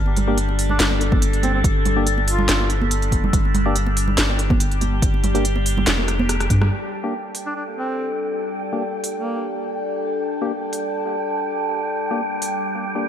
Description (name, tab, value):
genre	deep dubstep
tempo	142 BPM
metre	4/4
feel	swing 53% on 16ths, half-time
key	G minor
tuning	A4 = 440 Hz
part	overtone-sweeping drone	sustained chords	0.0-13.1 s	G3 to A4	-25 LUFS	left 1 dB	chorus, built-in reverb, phaser
part	soft dub sub bass	bass	0.0-6.7 s	F1 to G2	-21 LUFS	equal	tube saturation
part	congas	percussion	0.1-6.7 s	none	-27 LUFS	right 5 dB	dub echo
part	garage drum kit	drums	0.2-12.5 s	handclaps, hi-hat, rim click, snare drum	-23 LUFS	equal	none
part	percussive organ stab	stabs	0.3-13.1 s	Bb3 to G4	-28 LUFS	left 2 dB	chorus, dub echo
part	warm duduk	melody	0.7-2.7, 7.5-9.5 s	Bb3 to F4	-29 LUFS	equal	dub echo
part	electronic kick drum	drums	1.1-6.6 s	none	-20 LUFS	equal	none
part	wind-like tuned noise texture	texture	7.1-13.1 s	G5	-30 LUFS	right 2 dB	built-in reverb
room	light reverb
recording	none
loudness	-18 LUFS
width	side -9 dB against mid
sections	0.0-6.7 A section; 6.7-13.1 B section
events	drop 0.0-6.7; drum fill 6.1-6.7; band accent 6.6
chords	0.0 Gm